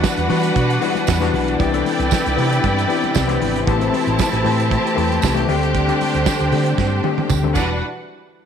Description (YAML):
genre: disco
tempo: 116 BPM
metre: 4/4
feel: straight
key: E minor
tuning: A4 = 440 Hz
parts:
  - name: rich symphonic string section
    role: second line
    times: 0.0-7.8 s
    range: D4 to A5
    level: -22 LUFS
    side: right 1 dB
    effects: none
  - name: overdriven reed electric piano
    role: accompaniment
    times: 0.0-7.8 s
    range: D3 to G5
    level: -22 LUFS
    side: left 10 dB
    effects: none
  - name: clear studio string section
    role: sustained chords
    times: 0.0-7.8 s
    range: C3 to B4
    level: -25 LUFS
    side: equal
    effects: none
  - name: warm soul drum kit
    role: drums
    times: 0.0-7.7 s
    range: crash cymbal, hi-hat, kick drum, snare drum, toms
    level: -24 LUFS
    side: right 5 dB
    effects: none
  - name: congas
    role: percussion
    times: 0.0-7.8 s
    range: none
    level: -32 LUFS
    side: left 9 dB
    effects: none
  - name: tambourine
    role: percussion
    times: 0.0-7.8 s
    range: none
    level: -31 LUFS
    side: right 18 dB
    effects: none
  - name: hollow-body short-scale fingered electric bass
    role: bass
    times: 0.2-7.8 s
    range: E1 to E3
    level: -21 LUFS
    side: right 2 dB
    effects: none
room: light reverb, small room ambience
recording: 1960s-style stereo with parts hard left and right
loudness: -15 LUFS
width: side -8 dB against mid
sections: 0.0-7.8 A section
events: reed electric piano fill 2.6-3.7; drum fill 6.8-7.8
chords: 0.0 Em9; 1.6 Cmaj9; 3.7 Am9; 5.5 D7sus4; 7.6 Em9; 7.8 N.C.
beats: 0.05 0.56 1.08 | 1.60 2.12 2.63 3.15 | 3.67 4.19 4.71 5.22 | 5.74 6.26 6.78 7.30 | 7.82